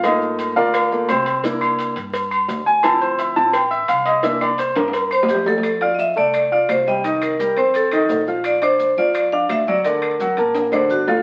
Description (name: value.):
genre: Afro-Cuban jazz.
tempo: 171 BPM.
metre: 4/4.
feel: straight.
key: F major.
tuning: A4 = 444 Hz.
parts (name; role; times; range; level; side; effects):
clear grand piano; accompaniment; 0.0-11.2 s; D3 to F6; -22 LUFS; equal; none.
upright bass; bass; 0.0-11.2 s; G1 to G2; -40 LUFS; equal; none.
agogo bells and timbales; percussion; 0.0-11.2 s; none; -26 LUFS; equal; none.
claves; percussion; 0.0-10.9 s; none; -35 LUFS; equal; none.
cowbell; percussion; 0.0-5.5 s; none; -32 LUFS; equal; none.
maracas; percussion; 0.0-11.2 s; none; -45 LUFS; equal; none.
vibraphone with medium hard mallets; melody; 5.1-11.2 s; F#4 to F5; -20 LUFS; equal; none.
room: wet studio reverb, RT60 0.8 s.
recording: very old 78 rpm record, vinyl crackle.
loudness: -18 LUFS.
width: mono.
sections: 0.0-5.6 A section; 5.6-11.2 B section.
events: grand piano solo 0.0-5.6; drum fill 4.8-5.6, 10.6-11.2.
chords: 0.0 Gm7; 1.4 C7; 2.8 Dm7; 4.2 C7; 5.6 F; 7.0 Cm; 7.7 F7; 8.4 Bb; 9.8 D.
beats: | 0.04 0.39 0.74 1.09 | 1.44 1.79 2.14 2.49 | 2.84 3.19 3.54 3.89 | 4.24 4.59 4.94 5.29 | 5.64 5.99 6.34 6.69 | 7.04 7.39 7.74 8.09 | 8.44 8.80 9.15 9.50 | 9.85 10.20 10.55 10.90.